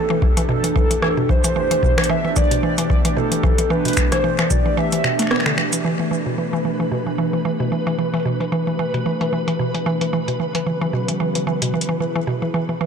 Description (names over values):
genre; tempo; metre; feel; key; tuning
IDM; 112 BPM; 4/4; swing 56% on 16ths; E minor; A4 = 441 Hz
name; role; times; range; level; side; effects
warbly nostalgic lead; melody; 0.0-5.3 s; A4 to E5; -23 LUFS; equal; wide subtle chorus, digital delay
warbly tape-like pad; sustained chords; 0.0-12.3 s; F2 to G4; -25 LUFS; equal; chorus, built-in reverb
mallet-like synth pluck; arpeggios; 0.1-12.9 s; B2 to B3; -22 LUFS; right 1 dB; chorus, digital delay
electronic kick drum; drums; 0.2-4.6 s; none; -20 LUFS; left 1 dB; none
booming analog drum machine; drums; 0.4-11.9 s; cabasa, finger snaps, hi-hat, rim click; -25 LUFS; equal; low-pass filter on hats, soft clipping on snare, low-pass filter on snare, low-pass filter on perc, low-pass filter on room, digital delay
flickering grainy texture; texture; 6.2-12.3 s; B4; -27 LUFS; left 1 dB; built-in reverb
room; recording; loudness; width
light reverb, digital ambience; blown-out, overdriven recording, overdrive; -17 LUFS; side -7 dB against mid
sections
0.0-5.8 A section; 5.8-12.9 B section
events
kick drops out 4.8-5.8; band accent 5.3; filter sweep on drum 5.8-12.9; filter sweep on synth arpeggio sound 5.8-12.9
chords
0.0 Fadd9; 1.6 Em7; 10.1 C#m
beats
0.49 1.02 | 1.56 2.10 2.63 3.17 | 3.70 4.24 4.77 5.31 | 5.85 6.38 6.92 7.45 | 7.99 8.52 9.06 9.60 | 10.13 10.67 11.20 11.74 | 12.27 12.81